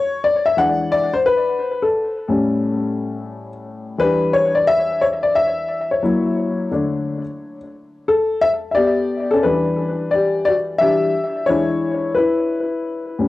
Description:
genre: hip hop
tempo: 88 BPM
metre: 4/4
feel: swing 64% on 16ths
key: E dorian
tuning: A4 = 440 Hz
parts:
  - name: dark grand piano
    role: solo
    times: 0.0-13.3 s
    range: A2 to F#5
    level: -16 LUFS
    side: left 2 dB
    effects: cassette tape, analog delay
room: moderate studio ambience, RT60 0.5 s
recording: home recording on cassette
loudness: -16 LUFS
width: side -16 dB against mid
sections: 0.0-9.4 A section; 9.4-13.3 B section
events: grand piano solo 0.0-9.4, 9.4-13.3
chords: 0.0 E7(no3); 0.6 E7; 1.3 A7; 4.0 Em7; 6.0 F#7; 6.7 Bm9/D; 9.4 Em7; 11.5 E7; 12.2 Asus2 (rootless)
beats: 0.58 | 1.26 1.94 2.63 3.31 | 3.99 4.67 5.35 6.04 | 6.72 7.40 8.08 8.76 | 9.44 10.13 10.81 11.49 | 12.17 12.85

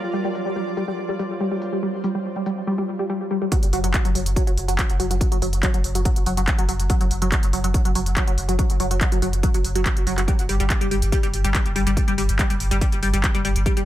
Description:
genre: driving peak-time techno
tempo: 142 BPM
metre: 4/4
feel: straight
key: unclear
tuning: A4 = 440 Hz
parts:
  - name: overtone-sweeping drone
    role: drone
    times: 0.0-2.7 s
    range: F#3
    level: -35 LUFS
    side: right 1 dB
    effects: chorus, built-in reverb, sidechain pumping
  - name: granular cloud pad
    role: texture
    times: 0.0-2.7 s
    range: E#4 to D5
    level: -31 LUFS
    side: right 2 dB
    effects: built-in reverb, sidechain pumping
  - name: tight sequenced synth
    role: riff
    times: 0.1-13.8 s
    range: F#3 to G3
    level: -25 LUFS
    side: equal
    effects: chorus, phaser, tube saturation, sidechain pumping, dub echo
  - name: techno drum kit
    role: drums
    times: 0.3-13.8 s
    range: handclaps, hi-hat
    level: -28 LUFS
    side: equal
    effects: low-pass filter on hats, studio reverb, low-pass filter on snare
  - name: electronic kick drum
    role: drums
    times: 3.5-13.7 s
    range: none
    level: -22 LUFS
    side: equal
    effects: studio reverb
  - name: warm sub bass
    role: bass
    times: 3.6-13.9 s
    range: F#1 to G1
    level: -24 LUFS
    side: equal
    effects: tube saturation, sidechain pumping, low-pass filter
room: digital ambience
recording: echo-heavy mix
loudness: -19 LUFS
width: side -13 dB against mid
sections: 0.0-3.5 A section; 3.5-13.9 B section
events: drop 3.5-13.9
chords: 0.0 Gm; 3.5 N.C.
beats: | 0.14 0.56 0.98 1.41 | 1.83 2.25 2.67 3.10 | 3.52 3.94 4.36 4.79 | 5.21 5.63 6.05 6.48 | 6.90 7.32 7.74 8.17 | 8.59 9.01 9.43 9.86 | 10.28 10.70 11.12 11.55 | 11.97 12.39 12.81 13.24 | 13.66

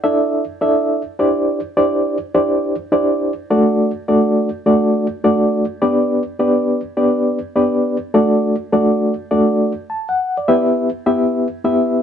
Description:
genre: soul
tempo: 103 BPM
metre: 4/4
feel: swing 64% on 8ths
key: D mixolydian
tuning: A4 = 440 Hz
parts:
  - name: bright reed electric piano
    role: solo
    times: 0.0-12.0 s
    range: A3 to A5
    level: -14 LUFS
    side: equal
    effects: fast tremolo
room: moderate studio reverb, RT60 0.7 s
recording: band playing live in one room, nothing above 11.0 kHz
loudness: -14 LUFS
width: side -8 dB against mid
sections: 0.0-12.0 A section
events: none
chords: 0.0 Dsus2; 1.2 Cadd9; 3.5 D; 5.8 G; 8.1 D; 10.5 Em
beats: 0.03 0.61 | 1.19 1.77 2.34 2.92 | 3.50 4.08 4.66 5.24 | 5.82 6.40 6.98 7.56 | 8.14 8.72 9.31 9.89 | 10.48 11.06 11.65

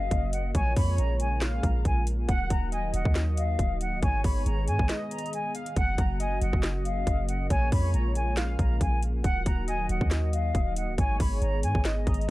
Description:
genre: hip hop, trap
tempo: 138 BPM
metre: 4/4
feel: half-time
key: unclear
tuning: A4 = 441 Hz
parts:
  - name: mellow concert flute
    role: melody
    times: 0.0-12.2 s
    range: E#5 to B5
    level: -33 LUFS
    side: left 1 dB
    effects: ping-pong delay
  - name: warm velvety synth lead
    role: second line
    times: 0.0-12.3 s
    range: C#5 to F#5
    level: -37 LUFS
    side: right 1 dB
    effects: chorus, ping-pong delay
  - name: dark analog pad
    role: sustained chords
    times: 0.0-12.3 s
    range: C#3 to G#4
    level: -36 LUFS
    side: left 1 dB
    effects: chorus
  - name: clean 808-style bass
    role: bass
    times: 0.0-12.3 s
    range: C#1 to G#2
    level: -28 LUFS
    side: equal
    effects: none
  - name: trap drum kit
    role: drums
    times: 0.1-12.3 s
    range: handclaps, hi-hat, kick drum, snare drum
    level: -28 LUFS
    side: equal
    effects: none
room: little or no reverb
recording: dark, warm production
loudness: -24 LUFS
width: side -18 dB against mid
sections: 0.0-12.3 A section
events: break 4.9-5.8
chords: 0.0 F#; 0.5 A#m7; 2.3 D#m; 4.0 G#m; 5.8 F#; 7.5 A#m7; 9.2 D#m; 11.0 G#m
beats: 0.11 | 0.55 0.98 1.42 1.85 | 2.29 2.72 3.16 3.59 | 4.03 4.46 4.89 5.33 | 5.76 6.20 6.63 7.07 | 7.50 7.94 8.37 8.81 | 9.24 9.68 10.11 10.55 | 10.98 11.42 11.85 12.29

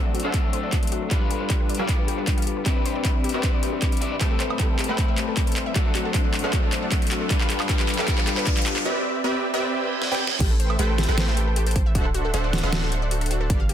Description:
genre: future bass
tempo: 155 BPM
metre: 4/4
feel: half-time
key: unclear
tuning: A4 = 440 Hz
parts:
  - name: electric guitar at the edge of break-up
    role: accompaniment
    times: 0.0-8.8 s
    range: F#3 to B5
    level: -28 LUFS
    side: left 6 dB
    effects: vintage 12-bit sampler grit, sidechain pumping, ping-pong delay
  - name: supersaw stab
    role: riff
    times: 0.0-13.7 s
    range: G3 to G5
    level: -28 LUFS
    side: right 1 dB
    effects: sidechain pumping, low-pass filter, ping-pong delay
  - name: wide unison pluck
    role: arpeggios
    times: 0.1-13.7 s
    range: F#4 to F5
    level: -34 LUFS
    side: left 1 dB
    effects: sidechain pumping, ping-pong delay
  - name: dubstep drum kit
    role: drums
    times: 0.1-13.7 s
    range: crash cymbal, handclaps, hi-hat, snare drum, woodblock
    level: -28 LUFS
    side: equal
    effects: overdrive, high-pass filter on snare, high-pass filter on hats, high-pass filter on perc, high-pass filter on cymbals, high-pass filter on room
  - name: electronic kick drum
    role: drums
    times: 0.3-13.6 s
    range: none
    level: -23 LUFS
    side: equal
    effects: overdrive
  - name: riser and reverse cymbal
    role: sound effects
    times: 6.6-10.4 s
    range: none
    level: -32 LUFS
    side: right 3 dB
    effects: none
  - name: long sustained 808-style bass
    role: bass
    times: 10.4-13.7 s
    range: D1 to A1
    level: -24 LUFS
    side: equal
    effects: sidechain pumping
room: light reverb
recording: dense, heavily limited modern master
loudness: -20 LUFS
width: side -10 dB against mid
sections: 0.0-10.4 A section; 10.4-13.7 B section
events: build-up 0.0-10.4; drum fill 0.0-8.9, 10.0-10.4; filter sweep on supersaw synth 0.0-10.4; filter sweep on synth arpeggio sound 0.0-10.4; riser 6.6-8.9; reverse cymbal 9.8-10.4; drop 10.4-13.7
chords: 0.0 D7; 1.1 G7; 2.7 Cmaj9; 4.2 Am7; 5.8 D7; 7.3 G7; 8.9 Cmaj9; 10.4 Am7; 12.0 D7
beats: 0.34 0.73 | 1.11 1.50 1.89 2.27 | 2.66 3.05 3.44 3.82 | 4.21 4.60 4.98 5.37 | 5.76 6.15 6.53 6.92 | 7.31 7.69 8.08 8.47 | 8.86 9.24 9.63 10.02 | 10.40 10.79 11.18 11.56 | 11.95 12.34 12.73 13.11 | 13.50

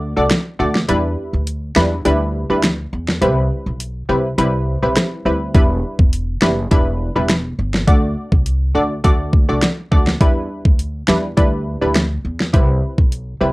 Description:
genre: dancehall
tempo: 103 BPM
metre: 4/4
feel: straight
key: E minor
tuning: A4 = 440 Hz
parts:
  - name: punchy chord stab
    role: accompaniment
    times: 0.0-13.5 s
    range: G3 to D5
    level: -18 LUFS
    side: equal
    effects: chorus
  - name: upright bass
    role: bass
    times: 0.0-13.5 s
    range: E1 to E2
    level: -20 LUFS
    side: equal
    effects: none
  - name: pop drum kit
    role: drums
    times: 0.3-13.3 s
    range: finger snaps, hi-hat, kick drum, rim click, snare drum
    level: -14 LUFS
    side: equal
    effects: overdrive, cassette tape
room: light reverb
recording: home recording on cassette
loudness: -14 LUFS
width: side -21 dB against mid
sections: 0.0-13.5 A section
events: break 0.0-5.5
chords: 0.0 D; 0.9 Em7; 3.2 Cmaj7; 5.5 Em7; 7.9 D; 10.2 Em7; 12.5 Cmaj7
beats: 0.31 | 0.89 1.47 2.05 2.64 | 3.22 3.80 4.38 4.97 | 5.55 6.13 6.71 7.30 | 7.88 8.46 9.04 9.63 | 10.21 10.79 11.37 11.96 | 12.54 13.12

